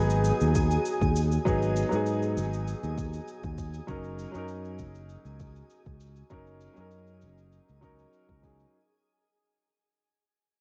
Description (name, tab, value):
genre	sunset chillout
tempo	99 BPM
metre	4/4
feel	straight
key	unclear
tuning	A4 = 440 Hz
part	clear grand piano	accompaniment	0.0-8.8 s	F#3 to A#4	-35 LUFS	equal	analog delay
part	fingered electric bass	bass	0.0-8.6 s	F#1 to G#2	-32 LUFS	equal	none
part	twinkling granular texture	texture	0.0-8.8 s	G#4 to G#5	-37 LUFS	equal	built-in reverb
part	shaker	drums	0.1-8.7 s	none	-49 LUFS	equal	low-pass filter on hats, cassette tape, low-pass filter on perc, low-pass filter on snare, low-pass filter on room
part	electronic kick drum	drums	0.6-8.6 s	none	-35 LUFS	equal	cassette tape
room	light reverb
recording	home recording on cassette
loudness	-28 LUFS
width	mono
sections	0.0-8.7 A section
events	fade-out 0.0-8.7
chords	0.0 G#m7; 3.9 F#6